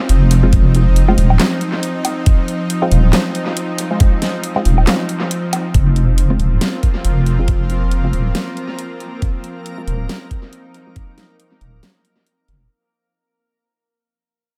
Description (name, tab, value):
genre	deep dubstep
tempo	138 BPM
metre	4/4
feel	swing 57% on 16ths, half-time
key	F minor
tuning	A4 = 440 Hz
part	bowed-like drone	sustained chords	0.0-12.7 s	F3 to F4	-25 LUFS	equal	built-in reverb
part	deep soft wobble bass	bass	0.1-12.7 s	Eb1 to F1	-15 LUFS	equal	chorus
part	dubstep drum kit	drums	0.1-12.6 s	handclaps, hi-hat, snare drum, woodblock	-23 LUFS	equal	analog delay
part	filtered dub chord stab	stabs	0.4-11.6 s	Ab3 to F4	-26 LUFS	equal	phaser, analog delay
part	electronic kick drum	drums	0.5-11.1 s	none	-16 LUFS	equal	none
part	backwards swelling texture	texture	6.5-12.7 s	Bb3 to Bb4	-38 LUFS	equal	built-in reverb
room	digital ambience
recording	echo-heavy mix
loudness	-16 LUFS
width	mono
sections	0.0-5.7 A section; 5.7-12.7 B section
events	drop 0.0-5.7; break 5.3-5.7; fade-out 5.7-12.7; filter sweep on synth stab 5.7-12.7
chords	0.0 Fm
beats	0.09 | 0.53 0.96 1.40 1.83 | 2.26 2.70 3.13 3.57 | 4.00 4.44 4.87 5.31 | 5.74 6.18 6.61 7.05 | 7.48 7.92 8.35 8.79 | 9.22 9.66 10.09 10.53 | 10.96 11.39 11.83 12.26